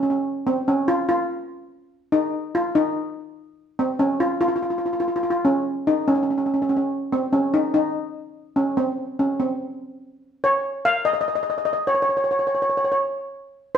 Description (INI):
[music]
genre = calypso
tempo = 145 BPM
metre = 4/4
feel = straight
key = Db major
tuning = A4 = 437 Hz
[part]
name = steel pan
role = solo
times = 0.0-13.8 s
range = C4 to F5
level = -20 LUFS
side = equal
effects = none
[sound]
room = wet stone room reverb, RT60 1.0 s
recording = band playing live in one room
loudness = -20 LUFS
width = side -8 dB against mid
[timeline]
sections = 0.0-10.4 A section; 10.4-13.8 B section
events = none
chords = none